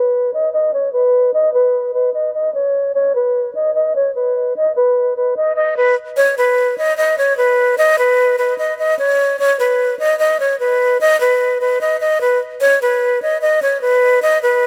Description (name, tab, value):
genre	hip hop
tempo	149 BPM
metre	4/4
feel	half-time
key	unclear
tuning	A4 = 441 Hz
part	breathy mellow silver concert flute	solo	0.0-14.7 s	B4 to D#5	-15 LUFS	equal	low-pass filter, digital delay
room	light reverb, small room ambience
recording	none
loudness	-15 LUFS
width	mono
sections	0.0-14.7 A section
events	filter sweep on flute 0.0-6.2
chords	none